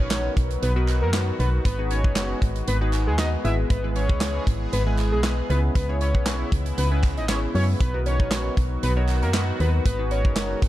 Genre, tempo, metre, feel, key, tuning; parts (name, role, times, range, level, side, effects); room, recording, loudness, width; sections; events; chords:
dance-pop; 117 BPM; 4/4; straight; B major; A4 = 444 Hz
fat analog lead; melody; 0.0-10.6 s; G#4 to E5; -30 LUFS; equal; sidechain pumping, tape echo
funky polysynth comp; accompaniment; 0.0-10.7 s; G#3 to C#5; -30 LUFS; left 1 dB; chorus, sidechain pumping
sweeping resonant pad; sustained chords; 0.0-10.7 s; C#3 to G#4; -34 LUFS; right 1 dB; chorus, sidechain pumping
solid FM bass; bass; 0.0-10.7 s; F#1 to F#2; -24 LUFS; equal; sidechain pumping
modern studio drum kit; drums; 0.1-10.7 s; handclaps, hi-hat, kick drum, snare drum; -25 LUFS; equal
group handclap; percussion; 0.1-10.5 s; -39 LUFS; right 3 dB
studio reverb; dark, warm production; -20 LUFS; side -14 dB against mid
0.0-10.7 A section
0.0 Bmaj7; 1.7 G#m7; 3.4 E/G#; 5.5 C#m7; 7.8 Bmaj7; 9.9 G#m7